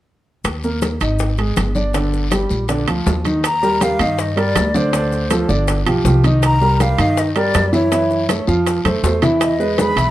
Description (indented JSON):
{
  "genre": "Afro-Cuban jazz",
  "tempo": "161 BPM",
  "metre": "4/4",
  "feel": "straight",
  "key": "Eb major",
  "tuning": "A4 = 440 Hz",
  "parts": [
    { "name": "upright bass", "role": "bass", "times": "0.4-10.1 s", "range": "G1 to G2", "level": "-20 LUFS", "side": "equal", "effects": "none" },
    { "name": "congas", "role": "percussion", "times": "0.4-10.1 s", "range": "none", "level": "-25 LUFS", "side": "left 2 dB", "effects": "none" },
    { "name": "guiro", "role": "percussion", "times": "0.4-10.1 s", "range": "none", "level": "-33 LUFS", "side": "left 6 dB", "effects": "none" },
    { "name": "maracas", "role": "percussion", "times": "0.4-10.1 s", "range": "none", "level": "-34 LUFS", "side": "left 8 dB", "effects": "none" },
    { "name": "timbales", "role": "percussion", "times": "0.4-10.1 s", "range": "none", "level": "-25 LUFS", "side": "right 7 dB", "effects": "none" },
    { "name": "bongos", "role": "percussion", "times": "0.5-10.0 s", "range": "none", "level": "-28 LUFS", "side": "left 6 dB", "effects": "none" },
    { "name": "warm baby grand piano", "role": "accompaniment", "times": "0.6-10.1 s", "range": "D3 to F5", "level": "-18 LUFS", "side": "right 1 dB", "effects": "none" },
    { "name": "breathy concert flute", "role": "melody", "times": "3.5-10.1 s", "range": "C5 to B5", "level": "-20 LUFS", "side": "left 1 dB", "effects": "none" }
  ],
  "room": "light reverb",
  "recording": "none",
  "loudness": "-14 LUFS",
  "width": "side -14 dB against mid",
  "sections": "0.4-3.4 A section; 3.4-10.1 B section",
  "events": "drum fill 8.9-9.4",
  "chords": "0.4 Eb5; 1.2 Ab5; 1.9 G5; 2.7 Bb; 3.4 Ebadd9; 4.9 Dm7; 5.7 G7; 6.4 Cm9; 7.9 Gbm7; 8.7 F; 9.4 Emaj7"
}